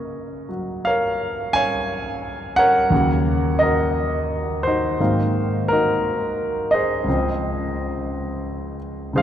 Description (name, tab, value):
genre	solo jazz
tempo	58 BPM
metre	4/4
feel	swing 67% on 8ths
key	Db major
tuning	A4 = 440 Hz
part	warm concert grand piano	solo	0.0-9.2 s	Db2 to Ab5	-19 LUFS	equal	none
room	wet cathedral reverb, RT60 5.2 s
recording	recorded in a church or concert hall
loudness	-19 LUFS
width	side -10 dB against mid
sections	0.0-9.2 A section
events	none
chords	0.0 Gbmaj7; 2.9 Ebm7; 5.0 Ab13; 7.1 Dbmaj7